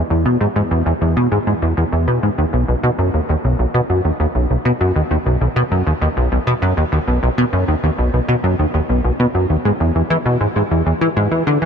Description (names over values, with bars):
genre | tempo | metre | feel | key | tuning
ambient | 99 BPM | 4/4 | straight | E major | A4 = 440 Hz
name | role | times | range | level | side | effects
plucky analog bass | solo | 0.0-11.7 s | B1 to E3 | -14 LUFS | equal | wide subtle chorus, tape echo
room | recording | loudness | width
moderate huge ambient reverb, RT60 7.9 s | none | -15 LUFS | side -7 dB against mid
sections
0.0-11.7 A section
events
none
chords
none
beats
0.56 1.17 1.77 | 2.38 2.98 3.59 4.20 | 4.80 5.41 6.01 6.62 | 7.23 7.83 8.44 9.04 | 9.65 10.26 10.86 11.47